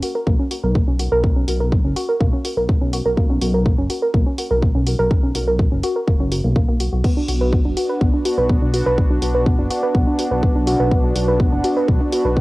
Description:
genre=melodic techno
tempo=124 BPM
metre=4/4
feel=straight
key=B harmonic minor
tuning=A4 = 440 Hz
part: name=woody wave-folded pluck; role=arpeggios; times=0.0-12.4 s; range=A#3 to B4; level=-21 LUFS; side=equal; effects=chorus, sidechain pumping, cassette tape, analog delay
part: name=punchy analog drum machine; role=drums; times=0.0-12.2 s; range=crash cymbal, hi-hat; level=-30 LUFS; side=right 1 dB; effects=sidechain pumping on hats, cassette tape, sidechain pumping on cymbals
part: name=dark detuned saw bass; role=bass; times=0.3-12.4 s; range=F#1 to B1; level=-21 LUFS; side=equal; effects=tube saturation, sidechain pumping
part: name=electronic kick drum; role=drums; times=0.3-12.4 s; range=none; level=-18 LUFS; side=equal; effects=cassette tape
part: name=sweeping resonant pad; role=sustained chords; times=7.0-12.4 s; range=B3 to F#4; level=-23 LUFS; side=equal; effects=chorus, vintage 12-bit sampler grit, sidechain pumping, cassette tape
room=light reverb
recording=home recording on cassette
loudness=-16 LUFS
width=side -20 dB against mid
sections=0.0-12.4 A section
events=none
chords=0.0 F#; 7.0 Bm

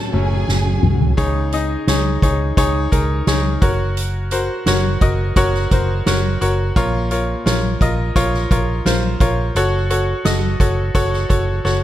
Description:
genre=piano-driven pop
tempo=86 BPM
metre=4/4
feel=straight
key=unclear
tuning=A4 = 440 Hz
part: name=warm studio violin section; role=second line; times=0.0-1.2 s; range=Ab4 to Ab5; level=-28 LUFS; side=right 2 dB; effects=none
part: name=bright grand piano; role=accompaniment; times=0.0-11.8 s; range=Bb2 to Eb5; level=-20 LUFS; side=left 1 dB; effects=none
part: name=mellow tonewheel organ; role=sustained chords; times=0.0-1.2 s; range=A2 to Gb4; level=-26 LUFS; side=equal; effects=chorus vibrato, wide subtle chorus
part: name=vintage muted fingered electric bass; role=bass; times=0.1-11.8 s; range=Gb1 to Db2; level=-20 LUFS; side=equal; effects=none
part: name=soft-mallet drum kit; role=drums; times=0.1-11.8 s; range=hi-hat, kick drum, ride cymbal, snare drum, toms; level=-19 LUFS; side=equal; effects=none
room=light reverb, small room ambience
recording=none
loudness=-15 LUFS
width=side -13 dB against mid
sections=0.0-1.2 A section; 1.2-11.8 B section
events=grand piano solo 0.0-1.2; drum fill 0.5-1.2, 11.6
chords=0.0 Gbm; 1.2 Dbsus2; 3.6 Gb; 6.8 Bbm; 9.6 Gbm

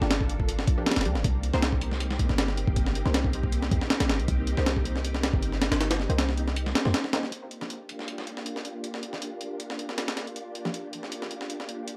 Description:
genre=drum and bass, jungle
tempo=158 BPM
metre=4/4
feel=straight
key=G minor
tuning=A4 = 440 Hz
part: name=soft string machine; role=sustained chords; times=0.0-12.0 s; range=Bb3 to A4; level=-38 LUFS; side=equal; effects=ensemble chorus, vintage 12-bit sampler grit
part: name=filtered dub chord stab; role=stabs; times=0.0-10.8 s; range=F3 to C5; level=-38 LUFS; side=equal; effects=phaser, dub echo
part: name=warm 808-style bass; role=bass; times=0.0-6.9 s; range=F1 to F2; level=-30 LUFS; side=equal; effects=none
part: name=breakbeat sampler-style drum kit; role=drums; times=0.0-12.0 s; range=hi-hat, kick drum, snare drum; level=-30 LUFS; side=equal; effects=high-pass filter on kick, high-pass filter on hats, high-pass filter on snare
room=little or no reverb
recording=dry, gritty hardware recording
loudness=-28 LUFS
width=mono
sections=0.0-7.3 A section; 7.3-12.0 B section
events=drop 0.0-7.3; filter sweep on synth stab 7.3-12.0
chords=0.0 Gm7; 1.2 Cm7; 7.3 Gm7

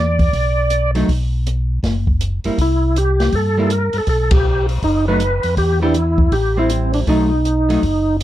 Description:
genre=soul jazz organ trio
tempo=160 BPM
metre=4/4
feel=swing 64% on 8ths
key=unclear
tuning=A4 = 439 Hz
part: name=percussive tonewheel organ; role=melody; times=0.0-8.2 s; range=C4 to D5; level=-18 LUFS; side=equal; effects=slow rotary speaker, chorus vibrato
part: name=mellow tonewheel organ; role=bass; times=0.0-8.2 s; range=F#1 to G2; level=-18 LUFS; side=equal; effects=overdrive, chorus vibrato, slow rotary speaker
part: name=open jazz drum kit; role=drums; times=0.2-8.2 s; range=hi-hat, kick drum, ride cymbal, snare drum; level=-20 LUFS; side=equal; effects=none
part: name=vintage hollow-body jazz guitar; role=accompaniment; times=0.9-7.8 s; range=E3 to G4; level=-20 LUFS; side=right 1 dB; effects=none
room=light reverb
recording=dark, warm production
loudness=-14 LUFS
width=side -13 dB against mid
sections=0.0-8.2 A section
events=band accent 4.3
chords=0.0 E5; 1.1 B5; 2.6 C; 4.1 B5; 5.6 Em7; 6.3 Am7; 7.1 B7

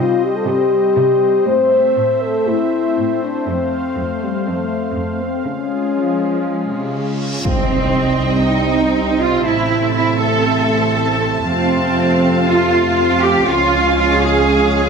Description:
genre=cinematic, hybrid orchestral and electronic film score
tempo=120 BPM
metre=4/4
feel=straight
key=unclear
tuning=A4 = 441 Hz
part: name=mellow French horn section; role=sustained chords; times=0.0-14.9 s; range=G3 to C5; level=-19 LUFS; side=left 3 dB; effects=none
part: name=warm analog pad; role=sustained chords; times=0.0-14.9 s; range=G3 to F5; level=-23 LUFS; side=left 2 dB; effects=chorus
part: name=rich symphonic cello section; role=bass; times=0.0-14.9 s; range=F2 to A4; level=-18 LUFS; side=right 3 dB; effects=none
part: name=reverse cymbal and impact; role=sound effects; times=7.1-9.5 s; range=none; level=-23 LUFS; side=equal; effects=none
part: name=warm symphonic violin section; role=melody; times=7.5-14.9 s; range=G5 to A5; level=-26 LUFS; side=left 1 dB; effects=none
part: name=dark symphonic violin section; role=second line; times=7.5-14.9 s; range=Eb5 to F5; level=-24 LUFS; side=left 2 dB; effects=none
part: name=dark symphonic viola section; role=accompaniment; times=7.5-14.9 s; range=C4 to Db4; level=-24 LUFS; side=right 3 dB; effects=none
part: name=clear trombone section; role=sustained chords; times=7.5-14.9 s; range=C3 to A3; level=-26 LUFS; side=right 3 dB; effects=none
part: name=rich symphonic double bass section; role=bass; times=7.5-14.9 s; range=A1 to F2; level=-20 LUFS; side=right 4 dB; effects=none
room=moderate scoring stage reverb, RT60 1.6 s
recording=none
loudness=-14 LUFS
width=side -5 dB against mid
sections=0.0-7.5 A section; 7.5-14.9 B section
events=reverse cymbal 7.1-7.5; impact 7.5-9.5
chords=0.0 Cm; 1.5 Am; 3.5 F; 5.5 Db; 7.5 Cm; 9.5 Am; 11.5 F; 13.5 Db

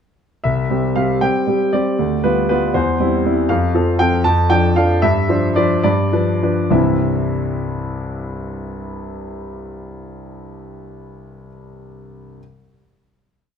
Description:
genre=classical-period piano sonatina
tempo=66-80 BPM (dotted quarters)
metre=6/8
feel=rubato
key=C major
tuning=A4 = 441 Hz
part: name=clear concert grand piano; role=solo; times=0.4-12.4 s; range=C2 to A5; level=-16 LUFS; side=equal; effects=none
room=moderate recital hall reverb, RT60 1.5 s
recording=close, detailed microphones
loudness=-15 LUFS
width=side -7 dB against mid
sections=0.4-6.7 theme; 6.7-10.2 final chord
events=slowing down 2.7-6.7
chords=0.4 C; 2.0 G7/D; 2.7 C/E; 3.5 F; 4.2 Dm/F; 5.0 G7sus4; 5.8 G7; 6.7 C

